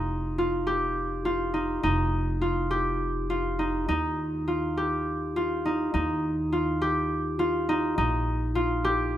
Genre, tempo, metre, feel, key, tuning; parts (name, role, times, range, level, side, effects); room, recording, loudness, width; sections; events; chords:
contemporary instrumental, chamber music in an uneven meter; 206 BPM (eighths); 7/8; straight; A4 = 440 Hz
concert harp; arpeggios; 0.0-9.2 s; Eb4 to G4; -26 LUFS; equal
upright bass; bass; 0.0-9.2 s; F1 to Eb2; -31 LUFS; equal
light reverb; close, detailed microphones; -25 LUFS; side -12 dB against mid
0.0-9.2 A section
0.0 Ebadd9/F; 3.9 Ebsus2; 8.0 Bb5